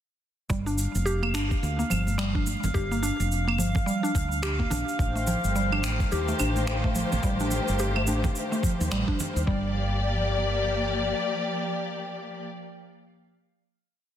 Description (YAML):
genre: organic downtempo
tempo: 107 BPM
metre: 4/4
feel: swing 60% on 16ths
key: G minor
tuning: A4 = 440 Hz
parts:
  - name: mallet-like synth pluck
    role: arpeggios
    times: 0.5-9.7 s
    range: F3 to G4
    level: -30 LUFS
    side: equal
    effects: chorus, digital delay
  - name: woody fretless electric bass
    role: bass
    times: 0.5-11.1 s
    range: F1 to Eb2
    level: -28 LUFS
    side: equal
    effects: sidechain pumping
  - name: electronic kick drum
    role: drums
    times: 0.5-9.6 s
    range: none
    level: -27 LUFS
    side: equal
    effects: overdrive
  - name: electronic shaker, claves and finger snaps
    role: drums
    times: 0.5-9.5 s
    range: none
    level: -34 LUFS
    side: right 2 dB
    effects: soft clipping on snare
  - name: drifting glass-harmonics texture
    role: texture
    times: 0.8-9.5 s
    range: F5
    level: -35 LUFS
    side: right 2 dB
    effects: chorus, built-in reverb
  - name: congas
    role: percussion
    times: 1.3-9.3 s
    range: none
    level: -37 LUFS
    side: right 3 dB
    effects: none
  - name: dark symphonic string section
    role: sustained chords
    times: 5.0-12.5 s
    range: Eb3 to D5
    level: -29 LUFS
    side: left 2 dB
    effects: sidechain pumping
room: moderate lush hall reverb, RT60 1.9 s, digital ambience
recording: dense, heavily limited modern master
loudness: -24 LUFS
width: side -10 dB against mid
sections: 0.5-9.5 groove; 9.5-11.7 final chord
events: none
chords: 0.5 Gm7; 5.0 Am7b5; 9.5 Gm7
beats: | 0.51 1.07 1.63 2.19 | 2.75 3.31 3.87 4.43 | 4.99 5.55 6.11 6.67 | 7.23 7.79 8.36 8.92 | 9.48 10.04 10.60 11.16